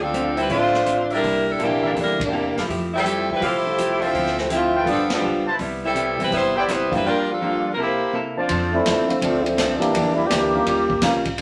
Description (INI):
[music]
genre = jazz, big band swing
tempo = 165 BPM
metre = 4/4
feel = swing 65% on 8ths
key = C major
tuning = A4 = 440 Hz
[part]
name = clear saxophone section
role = melody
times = 0.0-8.2 s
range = E3 to D5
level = -23 LUFS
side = equal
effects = none
[part]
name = archtop guitar, miked and amplified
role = accompaniment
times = 0.0-11.4 s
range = G2 to A4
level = -30 LUFS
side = equal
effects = none
[part]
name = warm baby grand piano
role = accompaniment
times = 0.0-3.8, 6.2-11.2 s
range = D3 to C5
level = -30 LUFS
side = equal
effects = none
[part]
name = upright bass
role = bass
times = 0.0-11.4 s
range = F#1 to C3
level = -35 LUFS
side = equal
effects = none
[part]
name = swinging big-band drum kit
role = drums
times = 0.1-11.4 s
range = hi-hat, kick drum, ride cymbal, snare drum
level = -31 LUFS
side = equal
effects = none
[part]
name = clear trumpet section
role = stabs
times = 1.1-8.8 s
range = D4 to A5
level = -29 LUFS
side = equal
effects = none
[part]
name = clear trombone section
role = second line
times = 8.7-11.2 s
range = D3 to G4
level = -22 LUFS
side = equal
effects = none
[sound]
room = wet studio reverb, RT60 0.7 s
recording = none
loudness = -21 LUFS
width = mono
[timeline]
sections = 0.0-8.5 A section; 8.5-11.4 B section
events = band accent 2.1, 5.0; trombone section solo 8.5-11.4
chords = 0.0 Dm7; 1.2 C13; 2.7 Fmaj9; 4.1 Dm9; 4.9 G9; 5.6 Cmaj7; 7.0 Gm7; 7.8 C13; 9.9 Em7b5; 10.7 Eb9